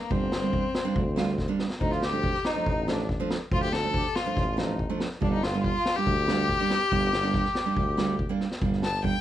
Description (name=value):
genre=klezmer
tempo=141 BPM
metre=4/4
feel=straight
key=G minor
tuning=A4 = 440 Hz
part: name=rich violin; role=melody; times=0.0-9.2 s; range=Bb3 to A5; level=-30 LUFS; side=left 4 dB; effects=none
part: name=nylon-string guitar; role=accompaniment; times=0.1-9.1 s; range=F3 to F4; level=-30 LUFS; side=right 4 dB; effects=none
part: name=clear tuba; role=bass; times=0.1-9.1 s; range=G1 to D2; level=-31 LUFS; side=equal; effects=none
part: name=street-band drum kit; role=drums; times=0.1-9.1 s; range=kick drum, snare drum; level=-30 LUFS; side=equal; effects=none
part: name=accordion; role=second line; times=1.8-9.2 s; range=D4 to A5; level=-32 LUFS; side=equal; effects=none
room=moderate studio ambience, RT60 0.5 s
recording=dark, warm production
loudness=-24 LUFS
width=side -12 dB against mid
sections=0.0-8.6 A section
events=drum fill 1.4-1.8, 8.4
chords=0.0 Gm; 1.8 Dm; 5.2 Gm